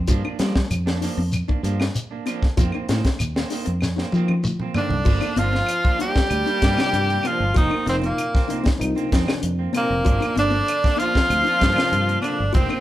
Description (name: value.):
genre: afrobeat.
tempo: 96 BPM.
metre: 4/4.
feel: straight.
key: G minor.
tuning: A4 = 440 Hz.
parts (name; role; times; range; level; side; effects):
fingered electric bass; bass; 0.0-12.7 s; F1 to G3; -24 LUFS; equal; none.
buzzing kalimba; arpeggios; 0.1-12.8 s; Bb3 to F4; -30 LUFS; left 4 dB; none.
electric guitar at the edge of break-up; stabs; 0.1-12.8 s; Eb3 to D4; -30 LUFS; right 6 dB; none.
tight funk drum kit; drums; 0.1-12.7 s; crash cymbal, hi-hat, kick drum, snare drum, toms; -22 LUFS; equal; none.
shekere; percussion; 0.1-4.9 s; none; -30 LUFS; left 1 dB; none.
claves; percussion; 0.2-12.8 s; none; -34 LUFS; right 1 dB; none.
bright bass trombone; second line; 4.7-12.8 s; Bb2 to G3; -30 LUFS; left 2 dB; none.
edgy tenor saxophone; melody; 4.8-12.8 s; Bb3 to G4; -22 LUFS; equal; none.
breathy alto saxophone; second line; 4.8-12.8 s; Bb3 to G4; -30 LUFS; right 3 dB; none.
overdriven reed electric piano; accompaniment; 6.8-12.4 s; C3 to Eb4; -29 LUFS; left 2 dB; fast tremolo.
room: moderate large studio reverb, RT60 0.9 s.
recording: band playing live in one room.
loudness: -18 LUFS.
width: side -14 dB against mid.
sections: 0.0-5.1 A section; 5.1-12.8 B section.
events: drum fill 3.8-5.1.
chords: 0.1 Gm7; 2.6 F7sus4; 5.1 Gm7; 7.6 F7sus4; 10.0 Gm7.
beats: | 0.08 0.70 1.33 1.95 | 2.57 3.19 3.82 4.44 | 5.06 5.68 6.31 6.93 | 7.55 8.18 8.80 9.42 | 10.05 10.67 11.29 11.92 | 12.54.